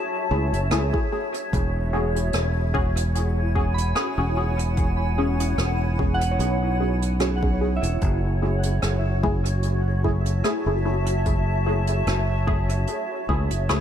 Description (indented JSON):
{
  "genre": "ambient dub",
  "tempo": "74 BPM",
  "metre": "4/4",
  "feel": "swing 54% on 16ths",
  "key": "F# minor",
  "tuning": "A4 = 440 Hz",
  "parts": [
    { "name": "granular cloud pad", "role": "sustained chords", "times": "0.0-13.8 s", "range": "E4 to A5", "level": "-29 LUFS", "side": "equal", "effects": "built-in reverb" },
    { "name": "soft synth bell", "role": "arpeggios", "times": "0.0-13.8 s", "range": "C#4 to B5", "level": "-32 LUFS", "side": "equal", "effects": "chorus, phaser, dub echo" },
    { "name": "filtered dub chord stab", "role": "stabs", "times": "0.3-13.8 s", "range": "A3 to G#4", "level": "-29 LUFS", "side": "left 1 dB", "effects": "phaser, wide subtle chorus, cassette tape, dub echo" },
    { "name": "fingered electric bass", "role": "bass", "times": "0.3-13.8 s", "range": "E1 to C#2", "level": "-23 LUFS", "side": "equal", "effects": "tube saturation" },
    { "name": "jazz brush drum kit", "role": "drums", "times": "0.5-13.8 s", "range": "hi-hat, rim click", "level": "-32 LUFS", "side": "right 2 dB", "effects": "dub echo" },
    { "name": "electronic kick drum", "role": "drums", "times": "0.9-13.5 s", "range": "none", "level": "-26 LUFS", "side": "equal", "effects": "none" }
  ],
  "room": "light reverb, small room reverb",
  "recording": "none",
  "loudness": "-21 LUFS",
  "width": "side -9 dB against mid",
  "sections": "0.0-13.8 A section",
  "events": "none",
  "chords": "0.0 F#m7; 1.5 E69; 8.0 F#m7"
}